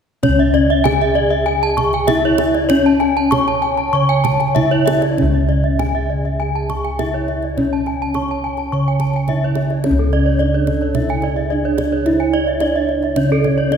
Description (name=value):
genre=Balinese gamelan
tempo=97-109 BPM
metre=4/4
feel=straight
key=C# pelog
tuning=A4 = 441 Hz
part: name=gamelan-type bronze metallophone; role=melody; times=0.2-13.8 s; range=C#4 to C#5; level=-20 LUFS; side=equal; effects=none
part: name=gamelan-type bronze metallophone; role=arpeggios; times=0.2-13.8 s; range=C#5 to C#6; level=-21 LUFS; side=left 4 dB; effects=none
part: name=gamelan-type bossed gongs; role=bass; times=0.2-13.8 s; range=C#2 to E4-30c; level=-19 LUFS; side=equal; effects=none
part: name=kendang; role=percussion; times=0.2-13.8 s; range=none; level=-25 LUFS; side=right 4 dB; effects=none
part: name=gamelan-type bronze metallophone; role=arpeggios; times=0.4-13.6 s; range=A4-20c to A5-20c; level=-23 LUFS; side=right 5 dB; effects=none
part: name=mellow xiao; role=second line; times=10.5-13.8 s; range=G#4-28c to D5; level=-25 LUFS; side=right 1 dB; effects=none
room=wet concert hall reverb, RT60 2.4 s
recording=recorded in a church or concert hall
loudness=-14 LUFS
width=side -7 dB against mid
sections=0.2-9.9 A section; 9.9-13.8 B section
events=none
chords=none